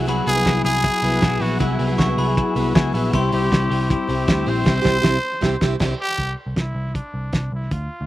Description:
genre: jangly indie pop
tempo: 157 BPM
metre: 4/4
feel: straight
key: unclear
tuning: A4 = 438 Hz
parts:
  - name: combo organ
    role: accompaniment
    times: 0.0-5.9 s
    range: C4 to G#5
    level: -29 LUFS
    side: left 5 dB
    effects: none
  - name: picked plugged-in steel-string acoustic guitar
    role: accompaniment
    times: 0.0-5.9 s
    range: C3 to G#4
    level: -26 LUFS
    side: right 6 dB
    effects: none
  - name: twelve-string electric guitar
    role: arpeggios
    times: 0.0-5.2 s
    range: F#3 to G#4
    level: -24 LUFS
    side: left 4 dB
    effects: none
  - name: vintage muted picked electric bass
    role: bass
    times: 0.0-8.1 s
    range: Bb1 to D2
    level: -23 LUFS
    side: equal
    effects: none
  - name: glockenspiel with brass mallets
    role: second line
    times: 0.1-4.7 s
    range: B5 to Db6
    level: -30 LUFS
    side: left 2 dB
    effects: slapback echo
  - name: cloth-damped thuddy drum kit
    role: drums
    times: 0.1-7.8 s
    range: crash cymbal, hi-hat, kick drum, ride cymbal, snare drum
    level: -21 LUFS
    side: equal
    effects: none
  - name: growling trumpet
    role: melody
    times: 0.3-8.1 s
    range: D4 to C5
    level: -24 LUFS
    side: equal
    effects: none
room: little or no reverb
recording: recorded outdoors, with no room sound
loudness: -17 LUFS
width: side -15 dB against mid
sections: 0.0-6.2 A section; 6.2-8.1 B section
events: transistor combo organ fill 2.6-3.1; band accent 4.7-6.2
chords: 0.0 Eadd9; 3.1 C; 6.2 Csus2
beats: | 0.08 0.46 0.84 1.22 | 1.61 1.99 2.37 2.75 | 3.13 3.52 3.90 4.28 | 4.66 5.04 5.42 5.81 | 6.19 6.57 6.96 7.34 | 7.72

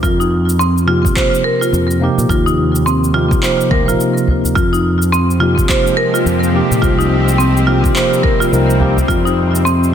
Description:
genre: organic downtempo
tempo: 106 BPM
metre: 4/4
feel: swing 60% on 16ths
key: F minor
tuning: A4 = 440 Hz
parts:
  - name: marimba with medium hard mallets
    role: arpeggios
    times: 0.0-9.8 s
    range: C4 to C5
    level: -16 LUFS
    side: right 1 dB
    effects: digital delay
  - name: fretless electric bass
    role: bass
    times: 0.0-9.9 s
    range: Bb1 to Bb2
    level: -16 LUFS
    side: equal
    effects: none
  - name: electronic kick drum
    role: drums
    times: 0.0-9.2 s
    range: none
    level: -18 LUFS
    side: equal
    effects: none
  - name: electronic shaker and handclaps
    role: drums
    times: 0.0-9.9 s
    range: none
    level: -23 LUFS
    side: left 1 dB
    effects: none
  - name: bright tine electric piano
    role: accompaniment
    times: 0.9-9.9 s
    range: C3 to Bb4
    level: -18 LUFS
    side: right 1 dB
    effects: medium stereo tremolo, sidechain pumping, digital delay
  - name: udu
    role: percussion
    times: 2.3-9.1 s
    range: none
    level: -21 LUFS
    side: equal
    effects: none
  - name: bowed-like drone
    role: sustained chords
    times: 5.3-9.9 s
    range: C3 to G4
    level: -20 LUFS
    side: left 2 dB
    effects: built-in reverb, sidechain pumping
room: moderate echo chamber reverb, RT60 2.3 s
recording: dense, heavily limited modern master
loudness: -11 LUFS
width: side -9 dB against mid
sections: 0.0-9.9 A section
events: none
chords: 0.0 F5; 2.3 Eb; 4.6 Fm7; 6.8 Cm7; 9.1 Fm7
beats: | 0.03 0.60 1.17 1.73 | 2.30 2.86 3.43 4.00 | 4.56 5.13 5.69 6.26 | 6.83 7.39 7.96 8.52 | 9.09 9.65

